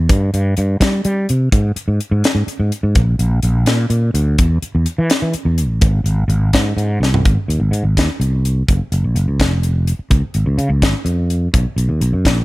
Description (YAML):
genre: electric jazz fusion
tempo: 84 BPM (dotted quarters)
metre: 6/8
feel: straight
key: Ab major from 7.3 s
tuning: A4 = 439 Hz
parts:
  - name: sustaining fretless electric bass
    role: bass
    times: 0.0-12.4 s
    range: F1 to G3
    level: -15 LUFS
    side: equal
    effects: none
  - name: crisp fusion drum kit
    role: drums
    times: 0.1-12.4 s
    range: hi-hat, kick drum, snare drum, toms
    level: -17 LUFS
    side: equal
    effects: none
room: little or no reverb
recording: none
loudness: -14 LUFS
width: side -20 dB against mid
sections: 0.0-7.3 A section; 7.3-12.4 B section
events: drum fill 7.0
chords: none